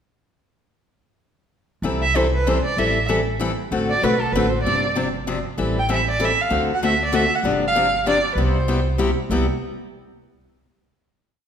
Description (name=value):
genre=acoustic string swing (jazz manouche)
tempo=193 BPM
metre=3/4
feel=swing 59% on 8ths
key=C major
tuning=A4 = 440 Hz
part: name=picked steel-string acoustic guitar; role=accompaniment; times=1.8-9.5 s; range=C3 to A4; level=-22 LUFS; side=left 2 dB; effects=none
part: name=upright bass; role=bass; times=1.8-9.5 s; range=G1 to D2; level=-25 LUFS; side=right 1 dB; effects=none
part: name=warm violin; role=melody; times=2.0-9.0 s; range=A4 to G5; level=-21 LUFS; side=right 2 dB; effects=none
room=moderate scoring stage reverb, RT60 1.6 s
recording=recorded in a church or concert hall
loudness=-18 LUFS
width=side -8 dB against mid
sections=1.8-9.3 A section; 9.3-10.2 final chord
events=none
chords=1.8 C6; 2.8 Am7; 3.7 D7/A; 4.6 G7sus4; 5.6 Am7; 6.5 D7; 7.4 G7sus4; 8.4 Cmaj7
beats=| 1.83 2.15 2.46 | 2.77 3.08 3.40 | 3.71 4.02 4.33 | 4.64 4.96 5.27 | 5.58 5.89 6.20 | 6.51 6.82 7.13 | 7.44 7.75 8.06 | 8.37 8.68 8.99 | 9.30